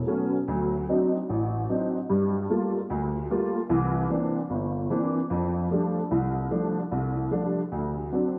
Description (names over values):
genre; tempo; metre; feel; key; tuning
jazz; 149 BPM; 4/4; swing 66% on 8ths; F major; A4 = 442 Hz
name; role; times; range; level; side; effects
dark baby grand piano; accompaniment; 0.1-8.4 s; G1 to F4; -27 LUFS; equal; ensemble chorus
room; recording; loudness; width
wet plate reverb, RT60 3.4 s; dreamy mix soaked in reverb; -27 LUFS; mono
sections
0.0-8.4 A section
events
none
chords
0.5 D7b9; 2.1 Gm9; 3.7 C9; 5.3 F69; 7.7 D7